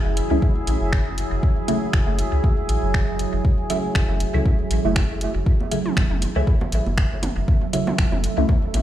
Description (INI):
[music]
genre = dub techno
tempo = 119 BPM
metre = 4/4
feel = swing 56% on 16ths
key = F# minor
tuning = A4 = 440 Hz
[part]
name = deep dark ambient pad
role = sustained chords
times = 0.0-8.8 s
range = F#3 to A4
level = -28 LUFS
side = right 2 dB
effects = chorus, built-in reverb, sidechain pumping
[part]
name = filtered dub chord stab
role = stabs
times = 0.0-8.6 s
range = C#3 to E4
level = -26 LUFS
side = equal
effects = phaser, sidechain pumping, dub echo
[part]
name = bubbling stepped-filter texture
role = texture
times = 0.0-8.8 s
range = E5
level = -37 LUFS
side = right 5 dB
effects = chorus, built-in reverb, sidechain pumping
[part]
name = round analog bass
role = bass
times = 0.1-8.8 s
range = F#1 to C#2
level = -23 LUFS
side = equal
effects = sidechain pumping
[part]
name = deep house drum kit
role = drums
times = 0.2-8.8 s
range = finger snaps, hi-hat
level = -29 LUFS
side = equal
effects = dub echo
[part]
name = electronic kick drum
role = drums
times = 0.4-8.6 s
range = none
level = -20 LUFS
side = equal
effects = none
[part]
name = electronic bongos and toms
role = percussion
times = 5.6-8.8 s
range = none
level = -30 LUFS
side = right 2 dB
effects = overdrive, sidechain pumping on perc, sidechain pumping on toms, dub echo
[sound]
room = digital ambience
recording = played on a big sound system in a bare room, stone room reverb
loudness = -18 LUFS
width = side -12 dB against mid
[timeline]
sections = 0.0-8.8 A section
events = none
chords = 0.0 F#m7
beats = 0.42 0.93 | 1.43 1.93 2.44 2.94 | 3.45 3.95 4.46 4.96 | 5.46 5.97 6.47 6.98 | 7.48 7.98 8.49